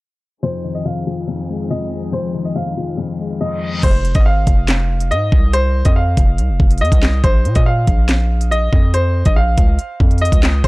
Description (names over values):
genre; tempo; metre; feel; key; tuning
hip hop, drill; 141 BPM; 4/4; half-time; F minor; A4 = 440 Hz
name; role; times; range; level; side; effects
bright upright piano; melody; 0.4-10.7 s; C5 to F5; -22 LUFS; equal; low-pass filter, tape echo
felt-muted upright piano; accompaniment; 0.4-3.9 s; F2 to Ab3; -21 LUFS; left 4 dB; low-pass filter
clear studio string section; sustained chords; 0.4-3.8 s; F3 to Ab4; -30 LUFS; equal; none
reverse cymbal; sound effects; 3.6-3.8 s; none; -31 LUFS; left 3 dB; none
distorted 808-style bass; bass; 3.8-10.7 s; Eb1 to Bb2; -16 LUFS; equal; distortion
drill drum kit; drums; 3.8-10.7 s; crash cymbal, handclaps, hi-hat, kick drum, snare drum; -14 LUFS; equal; none
room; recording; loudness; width
small room ambience; dark, warm production, low-pass filter; -13 LUFS; side -21 dB against mid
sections
0.4-3.8 A section; 3.8-10.7 B section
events
filter sweep 0.4-3.8; reverse cymbal 3.6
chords
0.4 Fm7; 7.2 Bbm